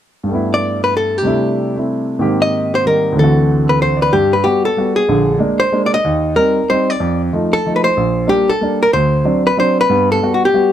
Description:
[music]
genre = jazz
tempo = 187 BPM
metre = 3/4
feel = swing 64% on 8ths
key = unclear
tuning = A4 = 440 Hz
[part]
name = clear grand piano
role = accompaniment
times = 0.2-10.7 s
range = Bb1 to D5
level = -16 LUFS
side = right 1 dB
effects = none
[part]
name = hollow-body jazz guitar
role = melody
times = 0.5-10.7 s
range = F#4 to Eb5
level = -14 LUFS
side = left 1 dB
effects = none
[sound]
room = little or no reverb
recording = close, detailed microphones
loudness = -12 LUFS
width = side -10 dB against mid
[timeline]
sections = 0.3-4.1 A section; 4.1-10.7 B section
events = none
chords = 0.3 G6; 1.2 C6; 2.2 Abmaj7; 3.2 D7; 4.1 Gmaj7; 5.1 Bb7; 6.0 Eb6; 7.0 F7; 8.0 Bb6; 8.9 D7; 9.9 Gmaj7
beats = | 0.27 0.59 0.91 | 1.23 1.55 1.88 | 2.20 2.52 2.84 | 3.16 3.48 3.80 | 4.12 4.44 4.76 | 5.08 5.40 5.72 | 6.04 6.36 6.68 | 7.00 7.32 7.64 | 7.96 8.29 8.61 | 8.93 9.25 9.57 | 9.89 10.21 10.53

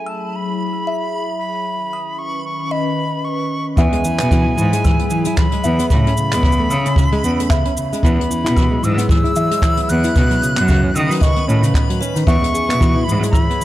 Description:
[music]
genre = folktronica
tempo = 113 BPM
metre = 4/4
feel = swing 56% on 16ths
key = E major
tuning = A4 = 440 Hz
[part]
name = bright silver concert flute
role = melody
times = 0.0-13.6 s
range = G#5 to F#6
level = -23 LUFS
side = left 1 dB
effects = none
[part]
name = warbly tape-like pad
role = sustained chords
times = 0.0-13.6 s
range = D#3 to A5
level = -25 LUFS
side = left 1 dB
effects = chorus, built-in reverb, phaser
[part]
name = backwards swelling texture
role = texture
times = 0.0-13.6 s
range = B5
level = -34 LUFS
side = right 2 dB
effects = built-in reverb
[part]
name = music box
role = second line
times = 0.1-13.5 s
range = B4 to E6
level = -28 LUFS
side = left 1 dB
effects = digital delay
[part]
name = nylon-string guitar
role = arpeggios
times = 3.8-13.6 s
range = C#3 to G#4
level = -21 LUFS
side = equal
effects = none
[part]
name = clear cello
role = bass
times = 3.8-13.2 s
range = E2 to D#3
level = -19 LUFS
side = equal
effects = none
[part]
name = jazz brush drum kit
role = drums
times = 3.8-13.6 s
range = cabasa, handclaps, hi-hat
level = -27 LUFS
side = equal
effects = none
[part]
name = kick drum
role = drums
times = 3.8-13.5 s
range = none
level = -16 LUFS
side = equal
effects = none
[sound]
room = little or no reverb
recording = dark, warm production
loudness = -14 LUFS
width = side -14 dB against mid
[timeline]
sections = 0.0-3.8 A section; 3.8-13.6 B section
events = filter sweep on ambient pad 0.0-3.8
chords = 0.0 Eadd9; 1.7 Badd9; 3.8 Eadd9; 5.9 Amaj7; 8.0 Eadd9; 10.2 Badd9; 12.3 Eadd9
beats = 0.07 0.60 1.13 | 1.66 2.19 2.72 3.25 | 3.79 4.32 4.85 5.38 | 5.91 6.44 6.97 7.50 | 8.03 8.56 9.10 9.63 | 10.16 10.69 11.22 11.75 | 12.28 12.81 13.34

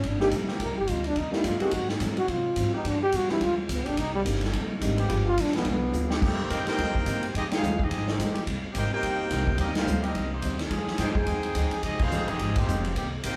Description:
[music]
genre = jazz, big band swing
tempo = 214 BPM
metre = 4/4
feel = swing 59% on 8ths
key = C minor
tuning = A4 = 440 Hz
[part]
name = breathy trombone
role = melody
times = 0.0-6.1 s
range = G3 to Bb4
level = -30 LUFS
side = equal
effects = none
[part]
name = picked steel-string acoustic guitar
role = accompaniment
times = 0.0-13.4 s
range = Ab2 to Ab4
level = -38 LUFS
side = equal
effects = none
[part]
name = upright bass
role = bass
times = 0.0-13.4 s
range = F1 to C3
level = -34 LUFS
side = equal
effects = none
[part]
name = swinging big-band drum kit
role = drums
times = 0.0-13.3 s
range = crash cymbal, hi-hat, kick drum, ride cymbal, snare drum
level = -32 LUFS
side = equal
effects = none
[part]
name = warm concert grand piano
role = accompaniment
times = 0.2-5.9 s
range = Eb3 to Ab4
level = -34 LUFS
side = equal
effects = none
[part]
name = clear trombone section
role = sustained chords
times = 0.5-13.1 s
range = Eb3 to Ab4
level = -39 LUFS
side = equal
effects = none
[part]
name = warm trumpet section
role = melody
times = 6.5-13.4 s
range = Ab3 to G5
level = -34 LUFS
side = equal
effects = none
[part]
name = warm trombone section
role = second line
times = 6.5-13.4 s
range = Eb3 to Ab4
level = -37 LUFS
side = equal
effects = none
[sound]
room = moderate large studio reverb, RT60 0.8 s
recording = band playing live in one room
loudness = -27 LUFS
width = mono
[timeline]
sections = 0.0-6.2 A section; 6.2-13.4 B section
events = trombone solo 0.0-6.2; drum fill 5.9; band accent 7.5, 9.7, 12.0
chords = 0.0 Cm7; 1.7 Ab7; 2.8 G7b9; 6.2 Cm7; 7.3 Fm9; 8.5 Cm7; 10.7 Fm9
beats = 0.04 0.32 | 0.60 0.88 1.16 1.44 | 1.73 2.01 2.29 2.57 | 2.85 3.13 3.41 3.69 | 3.97 4.25 4.53 4.82 | 5.10 5.38 5.66 5.94 | 6.22 6.50 6.78 7.06 | 7.34 7.62 7.90 8.19 | 8.46 8.75 9.03 9.31 | 9.59 9.87 10.15 10.43 | 10.71 10.99 11.27 11.55 | 11.84 12.12 12.40 12.68 | 12.96 13.24

